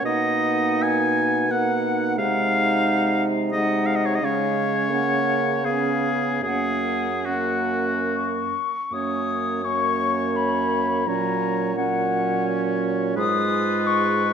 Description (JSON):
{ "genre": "classical, slow romantic movement for wind quintet", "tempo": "68-90 BPM", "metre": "3/4", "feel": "rubato", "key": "F# major", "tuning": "A4 = 440 Hz", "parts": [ { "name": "warm oboe", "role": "second line", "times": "0.0-14.3 s", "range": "F#4 to G#5", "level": "-25 LUFS", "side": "left 2 dB", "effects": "none" }, { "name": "mellow French horn", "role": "accompaniment", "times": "0.0-14.3 s", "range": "F#3 to B3", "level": "-28 LUFS", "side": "right 2 dB", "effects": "none" }, { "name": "warm clarinet", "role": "accompaniment", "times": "0.0-14.3 s", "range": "C#4 to F4", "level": "-28 LUFS", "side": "right 6 dB", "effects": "none" }, { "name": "mellow bassoon", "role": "bass", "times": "0.0-14.3 s", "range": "F#2 to C#3", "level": "-28 LUFS", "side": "right 2 dB", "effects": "none" }, { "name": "mellow concert flute", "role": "melody", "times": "0.1-14.3 s", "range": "E#5 to D#6", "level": "-26 LUFS", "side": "left 6 dB", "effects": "none" } ], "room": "wet scoring stage reverb, RT60 1.7 s", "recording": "none", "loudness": "-20 LUFS", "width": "side -7 dB against mid", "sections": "0.0-8.9 A section; 8.9-14.3 A section", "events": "none", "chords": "0.0 Bmaj7; 2.2 G#7/B#; 4.2 C#; 4.9 F#/C#; 5.6 C#7; 6.4 F#; 11.1 F#/A#; 13.2 Fdim/Ab" }